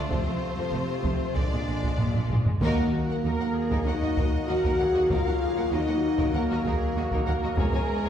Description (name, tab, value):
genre	cinematic, epic orchestral film score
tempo	97 BPM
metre	4/4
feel	straight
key	Eb minor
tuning	A4 = 440 Hz
part	rich studio violin section	melody	0.0-8.1 s	G#4 to Gb5	-37 LUFS	left 4 dB	none
part	warm symphonic violin section	second line	0.0-8.1 s	Ab3 to G#5	-36 LUFS	left 2 dB	none
part	rich symphonic viola section	accompaniment	0.0-8.1 s	C4 to Bb4	-36 LUFS	equal	none
part	clear trombone section	sustained chords	0.0-8.1 s	E3 to C#4	-35 LUFS	right 1 dB	none
part	mellow French horn section	sustained chords	0.1-8.1 s	C3 to Gb4	-28 LUFS	left 1 dB	none
part	rich studio double bass section	bass	0.1-7.6 s	E1 to Eb2	-34 LUFS	right 2 dB	none
part	rich symphonic cello section	bass	0.1-8.1 s	Eb2 to Bb2	-33 LUFS	right 1 dB	none
part	taiko ensemble	drums	0.1-8.1 s	none	-28 LUFS	equal	none
part	timpani	percussion	2.6-3.5 s	Eb3	-33 LUFS	left 2 dB	none
room	wet scoring stage reverb, RT60 1.6 s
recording	heard from further back in the room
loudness	-23 LUFS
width	side -9 dB against mid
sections	0.0-2.6 A section; 2.6-8.1 B section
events	drum fill 2.0-2.6; band accent 2.6-3.2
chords	0.1 F; 1.4 Bb7; 2.6 Ebm; 7.6 E6